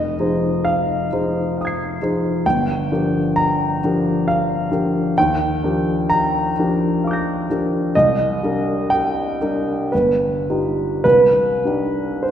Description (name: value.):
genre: classical, impressionist solo piano.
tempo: 50-67 BPM.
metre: 3/4.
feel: rubato.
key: C minor.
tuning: A4 = 435 Hz.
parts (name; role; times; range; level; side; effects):
clear grand piano; solo; 0.0-12.3 s; F1 to C7; -16 LUFS; equal; none.
room: wet concert hall reverb, RT60 2.0 s.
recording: heard from further back in the room.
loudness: -16 LUFS.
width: side -9 dB against mid.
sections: 0.0-12.3 A section.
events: none.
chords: 0.0 Fm7; 2.4 Gm7; 5.2 Ebmaj9; 7.9 Cm9; 9.9 Gaug7; 11.0 Cmadd9.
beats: 0.62 1.54 | 2.45 3.35 4.26 | 5.17 6.09 7.01 | 7.94 8.89 9.92 | 11.04 12.23.